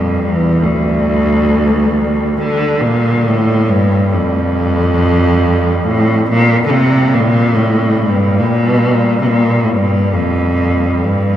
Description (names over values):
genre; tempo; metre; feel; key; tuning
caucasian folk, Caucasian lament; 69 BPM; 4/4; rubato; G dorian; A4 = 444 Hz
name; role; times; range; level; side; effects
rich cello; melody; 0.0-11.4 s; D2 to D3; -11 LUFS; equal; none
warm duduk; drone; 0.0-11.4 s; G3; -23 LUFS; right 1 dB; none
room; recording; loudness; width
wet cathedral reverb, RT60 6.2 s; in a vast, echoing space; -11 LUFS; side -11 dB against mid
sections
0.0-11.4 A section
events
none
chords
none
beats
0.17 1.08 1.96 | 2.82 3.69 4.55 5.41 | 6.27 7.12 7.98 8.85 | 9.72 10.61